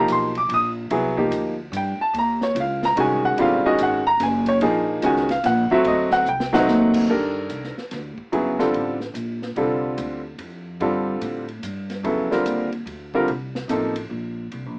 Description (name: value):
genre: modal jazz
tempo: 145 BPM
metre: 3/4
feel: swing 64% on 8ths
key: G minor from 7.1 s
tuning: A4 = 440 Hz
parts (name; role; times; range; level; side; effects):
- bright upright piano; accompaniment; 0.0-13.9 s; C3 to Eb6; -19 LUFS; equal; none
- upright bass; bass; 0.0-14.8 s; Gb1 to A2; -27 LUFS; equal; none
- open jazz drum kit; drums; 0.1-14.6 s; crash cymbal, hi-hat, kick drum, ride cymbal, snare drum; -34 LUFS; equal; none
room: light reverb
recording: rough home demo mix, small speaker sound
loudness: -19 LUFS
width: side -32 dB against mid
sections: 0.0-7.1 A section; 7.1-14.8 B section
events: drum fill 6.3-6.7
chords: 0.0 Cm9; 2.1 Ebm9; 5.8 D7b9; 7.1 G9sus4; 12.0 F9sus4